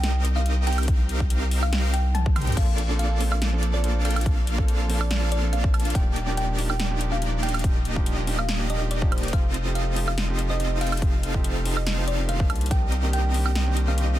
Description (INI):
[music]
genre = future bass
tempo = 142 BPM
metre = 4/4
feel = swing 53% on 16ths, half-time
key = Eb lydian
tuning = A4 = 435 Hz
[part]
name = thumb-piano-like synth pluck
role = melody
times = 0.0-14.1 s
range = C5 to C6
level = -33 LUFS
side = right 1 dB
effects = chorus, phaser, sidechain pumping, ping-pong delay
[part]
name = supersaw chords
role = riff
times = 0.0-14.2 s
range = Bb3 to G5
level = -30 LUFS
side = equal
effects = sidechain pumping
[part]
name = saturated sub bass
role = bass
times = 0.0-14.2 s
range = Eb1 to C2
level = -24 LUFS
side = equal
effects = sidechain pumping
[part]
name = big-room dance drum kit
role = drums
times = 0.0-14.1 s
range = crash cymbal, hi-hat, snare drum, toms, woodblock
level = -32 LUFS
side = right 1 dB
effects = none
[part]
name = electronic kick drum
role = drums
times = 0.9-12.8 s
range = none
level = -23 LUFS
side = equal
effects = none
[part]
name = warm grand piano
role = accompaniment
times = 2.6-14.2 s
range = Eb3 to A4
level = -33 LUFS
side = right 4 dB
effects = sidechain pumping, ping-pong delay
[sound]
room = little or no reverb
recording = dense, heavily limited modern master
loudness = -21 LUFS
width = side -13 dB against mid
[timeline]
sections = 0.0-14.2 A section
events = drum fill 2.1-2.6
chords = 0.0 Cm7; 2.6 Bbmaj7; 6.0 Ebmaj7; 9.3 F7; 12.5 Cm7